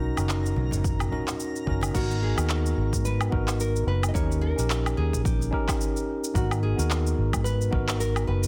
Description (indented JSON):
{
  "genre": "sunset chillout",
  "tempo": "109 BPM",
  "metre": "4/4",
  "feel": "swing 57% on 16ths",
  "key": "G# minor",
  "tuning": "A4 = 440 Hz",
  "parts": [
    { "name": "nylon-string guitar", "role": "melody", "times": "0.0-8.5 s", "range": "D#4 to D#5", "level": "-37 LUFS", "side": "equal", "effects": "delay" },
    { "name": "tine electric piano", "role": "accompaniment", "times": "0.0-8.5 s", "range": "B3 to A#4", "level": "-33 LUFS", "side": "equal", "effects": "delay" },
    { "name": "vintage muted fingered electric bass", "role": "bass", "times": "0.0-8.5 s", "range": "F#1 to G#2", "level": "-28 LUFS", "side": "equal", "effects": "tube saturation" },
    { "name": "twinkling granular texture", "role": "texture", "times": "0.0-2.0 s", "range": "A#5", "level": "-47 LUFS", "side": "equal", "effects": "built-in reverb" },
    { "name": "smooth R&B drum kit", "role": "drums", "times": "0.2-8.5 s", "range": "crash cymbal, handclaps, shaker, woodblock", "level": "-35 LUFS", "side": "equal", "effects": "overdrive, studio reverb" },
    { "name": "congas", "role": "percussion", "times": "0.2-1.9 s", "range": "none", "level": "-39 LUFS", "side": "equal", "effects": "none" },
    { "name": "electronic kick drum", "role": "drums", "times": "0.8-7.9 s", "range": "none", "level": "-32 LUFS", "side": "equal", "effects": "overdrive, studio reverb" }
  ],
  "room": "digital ambience",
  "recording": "dense, heavily limited modern master",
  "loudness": "-26 LUFS",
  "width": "mono",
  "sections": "0.0-1.9 A section; 1.9-8.5 B section",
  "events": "none",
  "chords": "0.0 Bmaj7; 1.9 G#m7; 4.1 D#7; 6.3 G#m7",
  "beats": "0.29 0.84 1.40 | 1.95 2.50 3.05 3.60 | 4.15 4.70 5.25 5.80 | 6.35 6.90 7.45 8.00"
}